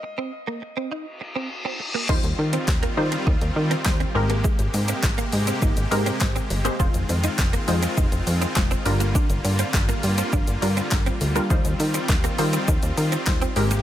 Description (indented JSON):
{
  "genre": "dance-pop",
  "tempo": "102 BPM",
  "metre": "4/4",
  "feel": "straight",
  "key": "Eb major",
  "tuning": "A4 = 440 Hz",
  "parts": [
    { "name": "warm concert grand piano", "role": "melody", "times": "0.0-1.5 s", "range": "Eb5", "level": "-40 LUFS", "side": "equal", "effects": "tape echo" },
    { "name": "wide unison pluck", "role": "accompaniment", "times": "0.0-13.8 s", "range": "G3 to C5", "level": "-28 LUFS", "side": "left 1 dB", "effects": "sidechain pumping" },
    { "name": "direct-recorded clean electric guitar", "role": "riff", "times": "0.0-13.8 s", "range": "Ab3 to F4", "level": "-30 LUFS", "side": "right 4 dB", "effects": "ensemble chorus" },
    { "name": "reverse cymbal", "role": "sound effects", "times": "1.2-2.1 s", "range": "none", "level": "-30 LUFS", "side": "left 2 dB", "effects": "none" },
    { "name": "supersaw chords", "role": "sustained chords", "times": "2.1-13.8 s", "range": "C3 to G4", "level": "-29 LUFS", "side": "equal", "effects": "sidechain pumping" },
    { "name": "plucky analog bass", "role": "bass", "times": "2.1-13.8 s", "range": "F1 to Eb3", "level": "-24 LUFS", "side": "equal", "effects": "sidechain pumping" },
    { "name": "deep house drum kit", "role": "drums", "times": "2.1-13.8 s", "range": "crash cymbal, handclaps, hi-hat, kick drum, shaker, snare drum", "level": "-23 LUFS", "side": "equal", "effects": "none" }
  ],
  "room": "little or no reverb",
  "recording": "none",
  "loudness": "-20 LUFS",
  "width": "side -12 dB against mid",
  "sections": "0.0-2.1 A section; 2.1-13.8 B section",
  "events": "break 0.0-2.1; reverse cymbal 1.2-2.1",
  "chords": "0.0 Fm7; 2.1 Eb69; 4.2 Abmaj9; 6.8 Fm7; 8.9 Gm7; 11.5 Eb69"
}